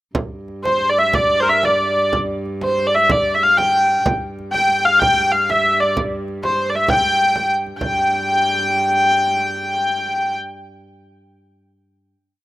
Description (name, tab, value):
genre	medieval dance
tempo	121-137 BPM (dotted quarters)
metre	6/8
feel	straight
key	unclear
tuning	A4 = 439 Hz
part	frame drum	percussion	0.1-7.9 s	none	-24 LUFS	right 2 dB	none
part	dark viola da gamba	drone	0.2-10.4 s	G2	-29 LUFS	right 1 dB	plate reverb
part	warm hurdy-gurdy	melody	0.6-10.3 s	Bb4 to G5	-15 LUFS	equal	plate reverb
room	moderate small room reverb, RT60 0.5 s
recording	rough home demo mix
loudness	-15 LUFS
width	side -16 dB against mid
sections	0.1-7.8 A section; 7.8-9.6 final note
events	speeding up 0.1-9.6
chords	none